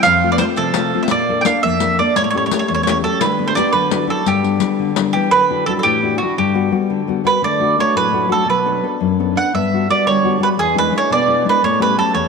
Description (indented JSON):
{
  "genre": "italian folk, Italian serenade",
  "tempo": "114 BPM (dotted quarters)",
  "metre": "6/8",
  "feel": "straight",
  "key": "G major, D major from 5.3 s",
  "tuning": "A4 = 441 Hz",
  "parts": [
    { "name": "mandolin", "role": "melody", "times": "0.0-12.3 s", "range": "F#4 to G5", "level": "-16 LUFS", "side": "right 3 dB", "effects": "none" },
    { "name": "nylon-string guitar", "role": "second line", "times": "0.0-12.3 s", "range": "D3 to E4", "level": "-24 LUFS", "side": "right 11 dB", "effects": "none" },
    { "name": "nylon-string guitar", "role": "accompaniment", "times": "0.0-12.3 s", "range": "E2 to A4", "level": "-19 LUFS", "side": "left 9 dB", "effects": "none" },
    { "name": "riq", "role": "percussion", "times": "0.0-5.1 s", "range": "none", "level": "-24 LUFS", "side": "left 11 dB", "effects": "none" }
  ],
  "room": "wet plate reverb, RT60 3.6 s",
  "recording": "1960s-style stereo with parts hard left and right",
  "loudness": "-14 LUFS",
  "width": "side -5 dB against mid",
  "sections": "0.0-5.3 A section; 5.3-12.3 B section",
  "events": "none",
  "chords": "0.0 F; 1.1 Bbmaj7; 2.2 A7; 3.2 G/D; 3.7 Dadd9; 4.3 G; 5.3 Dadd9; 6.4 Gmaj7; 7.4 D; 8.5 Bm7; 9.5 Gmaj7; 10.6 E7; 11.6 A7"
}